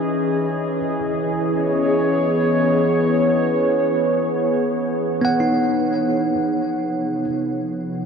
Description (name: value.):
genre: ambient.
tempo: free time.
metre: none.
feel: none.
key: unclear.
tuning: A4 = 440 Hz.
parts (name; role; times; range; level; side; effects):
warbly tape-like pad; sustained chords; 0.0-8.1 s; C3 to Eb5; -19 LUFS; equal; chorus, built-in reverb.
bell-like tine electric piano; arpeggios; 0.0-0.8, 5.2-8.1 s; B3 to Gb5; -21 LUFS; right 1 dB; diffuse ambient delay.
room: wet huge ambient reverb, RT60 8.4 s.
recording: in a vast, echoing space.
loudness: -17 LUFS.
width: side -6 dB against mid.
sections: 0.0-6.3 A section; 6.3-8.1 B section.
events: fade-in on tine electric piano 0.0-6.3; filter sweep on ambient pad 6.3-8.1.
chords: 0.0 Dbmadd9; 0.8 E6; 6.3 Ab6.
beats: free time.